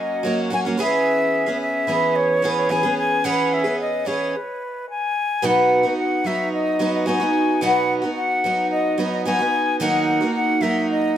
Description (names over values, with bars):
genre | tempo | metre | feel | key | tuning
acoustic pop | 110 BPM | 4/4 | straight | B major | A4 = 440 Hz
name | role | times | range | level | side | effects
silver concert flute | melody | 0.0-11.2 s | B4 to G#5 | -22 LUFS | left 2 dB | digital delay
picked twelve-string acoustic guitar | accompaniment | 0.0-11.2 s | B2 to G#4 | -20 LUFS | right 2 dB | none
room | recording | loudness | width
moderate studio reverb, RT60 0.7 s | none | -18 LUFS | side -10 dB against mid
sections
0.0-5.4 A section; 5.4-11.2 A section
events
stop 4.3-5.4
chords
0.0 F#; 0.8 E6; 5.4 B; 9.8 D#m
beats
0.52 | 1.07 1.61 2.16 2.71 | 3.25 3.80 4.34 4.89 | 5.43 5.98 6.53 7.07 | 7.62 8.16 8.71 9.26 | 9.80 10.35 10.89